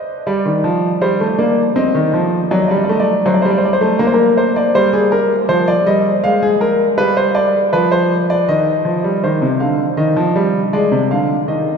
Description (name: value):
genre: classical, baroque-style two-part invention for grand piano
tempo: 80 BPM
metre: 3/4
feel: straight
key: C minor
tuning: A4 = 441 Hz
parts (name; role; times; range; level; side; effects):
- clear grand piano; solo; 0.0-11.8 s; C3 to F5; -12 LUFS; equal; none
room: wet cathedral reverb, RT60 6.6 s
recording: recorded in a church or concert hall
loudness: -12 LUFS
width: side -6 dB against mid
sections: 0.0-9.2 A section; 9.2-11.8 B section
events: none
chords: 0.3 Gm; 1.8 Cm; 2.5 D7/F#; 4.0 Bbadd9; 4.7 Cm/G; 6.2 Fm/Ab; 7.0 G7; 8.5 Ebadd9; 9.2 F5; 10.0 Eb; 10.7 Fm6/C